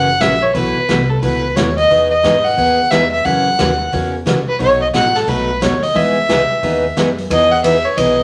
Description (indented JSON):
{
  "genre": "country, western swing",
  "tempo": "178 BPM",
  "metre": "4/4",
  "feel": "swing 63% on 8ths",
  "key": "E major",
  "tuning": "A4 = 440 Hz",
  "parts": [
    { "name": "warm fiddle", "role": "melody", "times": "0.0-8.2 s", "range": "A4 to F#5", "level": "-17 LUFS", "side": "equal", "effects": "none" },
    { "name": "picked steel-string acoustic guitar", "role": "accompaniment", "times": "0.0-8.2 s", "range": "B2 to G#4", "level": "-20 LUFS", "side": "equal", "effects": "none" },
    { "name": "upright bass", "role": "bass", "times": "0.0-8.2 s", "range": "F#1 to G#2", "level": "-26 LUFS", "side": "equal", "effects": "none" },
    { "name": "swinging big-band drum kit", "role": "drums", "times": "0.2-8.1 s", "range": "hi-hat, kick drum, ride cymbal, snare drum", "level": "-26 LUFS", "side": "equal", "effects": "none" }
  ],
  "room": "wet studio reverb, RT60 0.8 s",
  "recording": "none",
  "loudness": "-15 LUFS",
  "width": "mono",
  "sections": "0.0-7.3 A section",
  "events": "none",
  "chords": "0.0 F#7; 0.5 B9sus4; 1.9 Emaj7; 3.3 F#7; 4.6 B7; 6.0 Emaj9; 7.3 Emaj7"
}